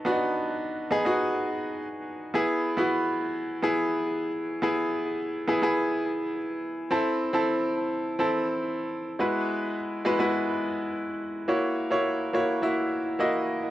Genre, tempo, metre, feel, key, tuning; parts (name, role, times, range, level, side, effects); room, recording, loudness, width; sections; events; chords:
pop; 105 BPM; 4/4; straight; E major; A4 = 441 Hz
bright baby grand piano; solo; 0.0-13.7 s; G#3 to E5; -25 LUFS; equal; cassette tape, analog delay
wet studio reverb, RT60 0.6 s; home recording on cassette; -25 LUFS; side -14 dB against mid
0.0-11.5 A section; 11.5-13.7 B section
0.0 B; 2.3 E/B; 6.9 Am; 9.2 Eadd9; 11.5 F#7